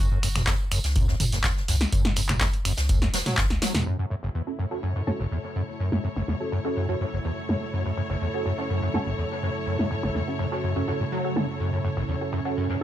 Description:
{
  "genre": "acid house",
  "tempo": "124 BPM",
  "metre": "4/4",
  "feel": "straight",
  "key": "unclear",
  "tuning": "A4 = 440 Hz",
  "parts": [
    { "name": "overdriven acid bass", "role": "riff", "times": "0.0-12.8 s", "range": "F#1 to F#3", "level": "-28 LUFS", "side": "equal", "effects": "distortion, ensemble chorus, sidechain pumping, tape echo" },
    { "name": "warm sub bass", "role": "bass", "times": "0.0-3.6 s", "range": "E1 to C#2", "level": "-28 LUFS", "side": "equal", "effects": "tube saturation, sidechain pumping" },
    { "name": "jazz brush drum kit", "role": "drums", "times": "0.0-12.8 s", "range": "hi-hat, snare drum, tambourine", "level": "-37 LUFS", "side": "left 1 dB", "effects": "high-pass filter on hats, low-pass filter on hats, high-pass filter on snare, low-pass filter on snare, high-pass filter on perc, low-pass filter on perc, high-pass filter on room, low-pass filter on room" },
    { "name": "punchy analog drum machine", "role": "drums", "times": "0.2-12.4 s", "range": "finger snaps, handclaps, hi-hat, snare drum, toms", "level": "-27 LUFS", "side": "equal", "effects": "low-pass filter on hats, low-pass filter on toms, low-pass filter on snare" },
    { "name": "tambourine", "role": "percussion", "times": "0.2-3.8 s", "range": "none", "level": "-36 LUFS", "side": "right 4 dB", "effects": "none" },
    { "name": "electronic kick drum", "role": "drums", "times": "0.5-3.5 s", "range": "none", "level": "-25 LUFS", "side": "equal", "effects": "overdrive" },
    { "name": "warbly tape-like pad", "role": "sustained chords", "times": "4.4-12.8 s", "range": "F#2 to C#4", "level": "-34 LUFS", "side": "right 4 dB", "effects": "chorus, built-in reverb, sidechain pumping" },
    { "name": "muted studio string section", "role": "texture", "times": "3.9-12.8 s", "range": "F#3 to C#5", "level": "-33 LUFS", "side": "left 3 dB", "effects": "sidechain pumping" },
    { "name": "filtered dub chord stab", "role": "stabs", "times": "4.5-12.7 s", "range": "C#4 to A4", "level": "-32 LUFS", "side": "right 2 dB", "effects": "phaser, wide subtle chorus, tape echo" }
  ],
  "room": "light reverb",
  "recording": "none",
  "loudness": "-24 LUFS",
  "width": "side -12 dB against mid",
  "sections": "0.0-3.9 A section; 3.9-12.8 B section",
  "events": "filter sweep on acid bass 0.0-3.9; drum fill 3.5-3.9",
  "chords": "0.0 F#5; 3.9 F#m"
}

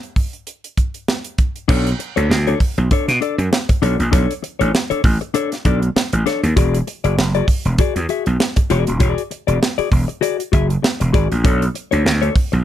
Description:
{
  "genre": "funk",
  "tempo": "98 BPM",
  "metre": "4/4",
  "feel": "swing 56% on 16ths",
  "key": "B dorian",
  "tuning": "A4 = 440 Hz",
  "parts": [
    { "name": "tight funk drum kit", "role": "drums", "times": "0.0-12.6 s", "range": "crash cymbal, hi-hat, kick drum, snare drum", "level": "-18 LUFS", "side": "right 1 dB", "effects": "none" },
    { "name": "mellow electric guitar", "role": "accompaniment", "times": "1.7-12.6 s", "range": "D4 to E5", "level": "-20 LUFS", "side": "left 8 dB", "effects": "none" },
    { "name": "gritty slap bass", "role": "bass", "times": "1.7-12.6 s", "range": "D#1 to B2", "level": "-17 LUFS", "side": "right 1 dB", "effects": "overdrive" }
  ],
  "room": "light reverb",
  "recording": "none",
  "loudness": "-15 LUFS",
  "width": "side -11 dB against mid",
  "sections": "0.0-1.7 A section; 1.7-12.6 B section",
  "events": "none",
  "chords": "0.0 N.C.; 1.7 Bm9; 6.6 E9; 11.4 Bm9"
}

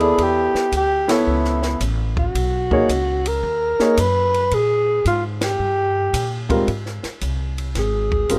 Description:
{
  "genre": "jazz, small-group swing and bop",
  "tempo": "111 BPM",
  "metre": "4/4",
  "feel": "swing 67% on 8ths",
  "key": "unclear",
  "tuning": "A4 = 440 Hz",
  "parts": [
    { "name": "breathy alto saxophone", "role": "melody", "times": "0.0-8.4 s", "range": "E4 to B4", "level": "-22 LUFS", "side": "equal", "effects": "none" },
    { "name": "warm grand piano", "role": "accompaniment", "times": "0.0-8.4 s", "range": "Ab2 to D5", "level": "-22 LUFS", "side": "equal", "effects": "none" },
    { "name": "upright bass", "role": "bass", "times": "0.0-8.4 s", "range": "G1 to Bb2", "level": "-26 LUFS", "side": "equal", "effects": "none" },
    { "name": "compact cocktail drum kit", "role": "drums", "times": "0.0-8.4 s", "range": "hi-hat, kick drum, ride cymbal, snare drum", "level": "-30 LUFS", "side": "equal", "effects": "none" }
  ],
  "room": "small room ambience",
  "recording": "rough home demo mix",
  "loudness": "-20 LUFS",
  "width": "mono",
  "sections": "0.0-6.7 A section; 6.7-8.4 B section",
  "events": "band accent 1.0, 5.3; alto saxophone solo 6.7-8.4",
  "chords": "0.2 Em7; 1.3 Aadd9; 2.4 Bmaj7; 4.5 Fmadd11 (rootless); 5.6 Gmadd11"
}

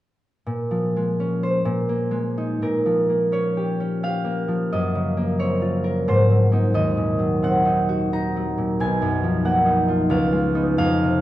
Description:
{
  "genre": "classical, solo harp piece",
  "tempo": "74-92 BPM",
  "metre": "3/4",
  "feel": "rubato",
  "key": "Bb minor",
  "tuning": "A4 = 443 Hz",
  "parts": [
    { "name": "concert harp", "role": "solo", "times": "0.5-11.2 s", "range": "B1 to Bb5", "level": "-19 LUFS", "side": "equal", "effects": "none" }
  ],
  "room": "wet recital hall reverb, RT60 1.2 s",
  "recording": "dark, warm production",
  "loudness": "-19 LUFS",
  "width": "side -14 dB against mid",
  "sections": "0.5-2.6 A section; 2.6-11.2 B section",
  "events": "none",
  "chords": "0.5 Bbm7; 1.5 Abadd9/Bb; 2.6 Bbm6; 4.7 Gbmaj7#11; 6.1 Ab9; 6.7 Ebm6; 8.8 Bmaj7#11; 10.1 Db9"
}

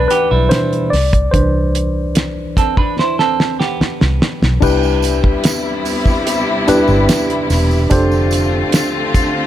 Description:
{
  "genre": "lush 1970s-style soul",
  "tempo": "73 BPM",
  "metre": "4/4",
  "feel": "straight",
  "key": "C major",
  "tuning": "A4 = 440 Hz",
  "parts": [
    { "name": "tine electric piano", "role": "accompaniment", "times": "0.0-9.5 s", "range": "B2 to D5", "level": "-17 LUFS", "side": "moving between left 8 dB and right 1 dB", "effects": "auto-pan" },
    { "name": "semi-hollow electric guitar", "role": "riff", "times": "0.0-4.6 s", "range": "G3 to C5", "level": "-18 LUFS", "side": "right 6 dB", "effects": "none" },
    { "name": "vintage muted fingered electric bass", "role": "bass", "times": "0.0-8.6 s", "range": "E1 to C2", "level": "-16 LUFS", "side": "equal", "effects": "none" },
    { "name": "damped 70s drum kit", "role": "drums", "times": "0.1-9.3 s", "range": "crash cymbal, hi-hat, kick drum, snare drum", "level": "-17 LUFS", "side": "equal", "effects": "none" },
    { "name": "rich studio string section", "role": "sustained chords", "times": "4.6-9.5 s", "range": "C3 to F4", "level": "-19 LUFS", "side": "left 2 dB", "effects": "none" },
    { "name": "tambourine", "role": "percussion", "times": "4.6-9.3 s", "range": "none", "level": "-30 LUFS", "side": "right 5 dB", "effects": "none" }
  ],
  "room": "studio ambience",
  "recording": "none",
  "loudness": "-12 LUFS",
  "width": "side -12 dB against mid",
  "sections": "0.0-4.6 A section; 4.6-9.5 B section",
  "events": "tine electric piano solo 0.0-4.6; drum fill 3.0-4.6",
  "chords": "0.0 Cmaj9; 4.6 Cmaj7; 7.9 F6"
}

